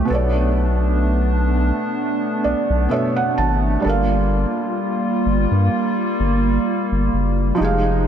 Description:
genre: contemporary R&B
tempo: 64 BPM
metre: 4/4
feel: swing 54% on 16ths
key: unclear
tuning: A4 = 440 Hz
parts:
  - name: felt-muted upright piano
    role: accompaniment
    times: 0.0-8.1 s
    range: B2 to A5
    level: -23 LUFS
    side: right 3 dB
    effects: none
  - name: hollow soft pad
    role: sustained chords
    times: 0.0-8.1 s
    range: F3 to F4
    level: -21 LUFS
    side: right 1 dB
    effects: chorus
  - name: saturated sub bass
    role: bass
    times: 0.0-8.1 s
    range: F1 to G2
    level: -19 LUFS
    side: left 1 dB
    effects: none
room: moderate lush hall reverb, RT60 2.7 s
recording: dreamy mix soaked in reverb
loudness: -17 LUFS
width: side -9 dB against mid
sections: 0.0-8.1 A section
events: felt piano fill 2.0-3.8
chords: 0.1 Bm7; 3.8 Gm7

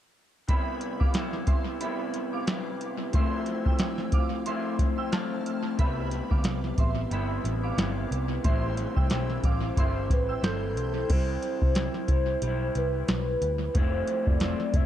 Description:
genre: indie pop, bedroom pop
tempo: 90 BPM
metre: 4/4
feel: swing 55% on 16ths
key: C major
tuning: A4 = 441 Hz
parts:
  - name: shimmering bell with halo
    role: second line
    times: 0.5-10.9 s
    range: E5 to G6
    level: -37 LUFS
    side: right 4 dB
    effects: ensemble chorus, analog chorus, tape echo
  - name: electric guitar through a small old amp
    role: accompaniment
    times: 0.5-14.9 s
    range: A2 to E4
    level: -31 LUFS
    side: left 1 dB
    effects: wide subtle chorus, vibrato effect, tape echo
  - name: soft vintage rhythm box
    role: drums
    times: 0.5-14.9 s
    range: crash cymbal, hi-hat, kick drum, snare drum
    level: -27 LUFS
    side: equal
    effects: tape echo
  - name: vintage muted picked electric bass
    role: bass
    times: 5.8-14.9 s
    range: F1 to D2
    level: -31 LUFS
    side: equal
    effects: none
  - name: warbly nostalgic lead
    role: melody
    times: 10.1-14.9 s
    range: A4 to E5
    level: -31 LUFS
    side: equal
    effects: analog chorus, tape echo
room: digital ambience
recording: echo-heavy mix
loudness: -25 LUFS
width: side -11 dB against mid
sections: 0.5-11.1 A section; 11.1-14.9 B section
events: none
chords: 0.5 Cmaj7; 3.1 Fmaj7; 5.8 Cmaj7; 8.4 Am7; 11.1 Cmaj7; 13.7 Fmaj7

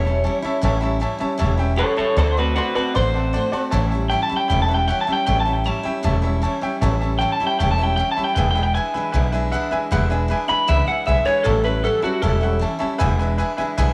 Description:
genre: rock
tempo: 155 BPM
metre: 4/4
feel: straight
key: A mixolydian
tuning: A4 = 440 Hz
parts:
  - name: electric guitar through a small old amp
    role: melody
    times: 0.0-12.6 s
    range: F#4 to B5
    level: -23 LUFS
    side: equal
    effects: tape echo
  - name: picked steel-string acoustic guitar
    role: accompaniment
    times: 0.0-13.9 s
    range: E2 to F#4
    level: -28 LUFS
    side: equal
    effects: none
  - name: upright bass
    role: bass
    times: 0.0-13.9 s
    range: E1 to D2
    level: -23 LUFS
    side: equal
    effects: none
  - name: clear upright piano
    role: accompaniment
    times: 0.1-13.9 s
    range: B4 to C6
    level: -29 LUFS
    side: equal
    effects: none
room: light reverb, small room ambience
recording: none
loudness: -20 LUFS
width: mono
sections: 0.0-13.9 A section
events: clean electric guitar solo 0.0-13.9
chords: 0.0 A7; 2.2 D7; 3.7 A7; 8.4 E7; 11.5 A7; 13.0 E7

